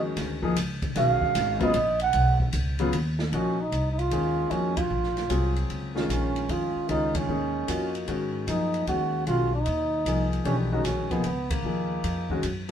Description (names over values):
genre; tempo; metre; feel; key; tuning
modal jazz; 152 BPM; 3/4; swing 66% on 8ths; Bb phrygian; A4 = 442 Hz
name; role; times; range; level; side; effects
trumpet with bucket mute; melody; 0.0-12.4 s; Bb3 to Gb5; -27 LUFS; right 3 dB; none
warm grand piano; accompaniment; 0.0-12.7 s; Db3 to Ab4; -29 LUFS; left 3 dB; none
upright bass; bass; 0.0-12.7 s; Ab1 to Ab2; -29 LUFS; equal; none
open jazz drum kit; drums; 0.2-12.7 s; hi-hat, kick drum, ride cymbal, snare drum; -35 LUFS; equal; none
room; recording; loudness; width
moderate stone room reverb, RT60 1.0 s; band playing live in one room; -24 LUFS; side -9 dB against mid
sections
0.0-3.3 A section; 3.3-12.7 B section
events
muted trumpet solo 0.0-3.3; band accent 4.7, 7.1, 11.4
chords
0.0 Abm9; 3.3 Bbm9; 8.1 Abm9